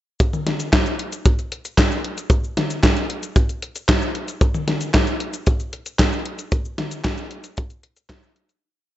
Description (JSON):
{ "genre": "italo disco", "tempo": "114 BPM", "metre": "4/4", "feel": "straight", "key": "none", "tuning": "none", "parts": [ { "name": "gated 80s digital drum machine", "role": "drums", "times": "0.2-8.6 s", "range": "cabasa, handclaps, hi-hat, snare drum, toms", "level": "-22 LUFS", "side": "equal", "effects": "gated reverb, gated reverb snare, overdrive" }, { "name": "kick drum", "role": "drums", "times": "0.2-8.2 s", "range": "none", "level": "-18 LUFS", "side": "equal", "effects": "none" } ], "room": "light reverb", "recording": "nothing above 7.9 kHz", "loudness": "-19 LUFS", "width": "side -13 dB against mid", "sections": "0.2-8.6 chorus", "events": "fade-out 5.8-8.6", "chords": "none" }